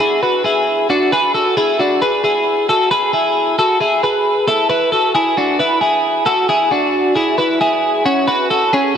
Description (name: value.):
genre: indie pop.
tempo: 134 BPM.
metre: 4/4.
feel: straight.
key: B dorian.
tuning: A4 = 440 Hz.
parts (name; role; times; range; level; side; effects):
twelve-string electric guitar; solo; 0.0-9.0 s; C#4 to B4; -13 LUFS; equal; none.
room: wet huge ambient reverb, RT60 4.8 s.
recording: dreamy mix soaked in reverb.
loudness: -13 LUFS.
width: side -8 dB against mid.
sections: 0.0-9.0 A section.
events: none.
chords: 0.0 Bm7; 8.1 F#m.